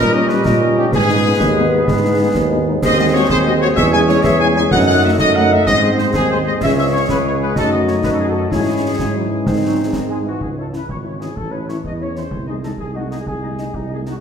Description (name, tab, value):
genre	military-style march for wind band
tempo	126 BPM (dotted quarters)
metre	6/8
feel	straight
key	C# minor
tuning	A4 = 439 Hz
part	dark trumpet section	melody	0.0-14.1 s	D#4 to G#5	-20 LUFS	left 1 dB	none
part	warm woodwind section	second line	0.0-14.1 s	D#4 to D#5	-22 LUFS	left 1 dB	none
part	mellow trombone section	sustained chords	0.0-10.4 s	D#3 to D#4	-22 LUFS	right 2 dB	none
part	warm tuba	bass	0.0-14.1 s	G#1 to A#2	-19 LUFS	right 2 dB	none
part	mellow French horn section	accompaniment	0.1-14.1 s	E3 to G#4	-22 LUFS	left 4 dB	none
part	concert snare drum, concert bass drum and clash cymbals	drums	0.3-14.2 s	none	-24 LUFS	left 1 dB	none
room	wet recital hall reverb, RT60 1.7 s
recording	recorded in a church or concert hall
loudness	-14 LUFS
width	side -7 dB against mid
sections	0.0-10.4 A section; 10.4-14.2 B section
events	none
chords	0.0 D#7/A#; 0.9 G#m; 2.8 G#7/D#; 3.8 C#m/E; 4.7 D#dim/F#; 5.7 G#; 6.6 C#5; 7.6 D#dim/F#; 8.5 C#m/G#; 9.5 G#; 10.4 C#m; 11.4 A; 12.3 G#/B#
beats	0.45 | 0.92 1.40 | 1.87 2.35 | 2.82 3.30 | 3.77 4.25 | 4.72 5.20 | 5.67 6.14 | 6.62 7.09 | 7.57 8.04 | 8.51 8.99 | 9.46 9.94 | 10.41 10.89 | 11.36 11.84 | 12.31 12.79 | 13.27 13.74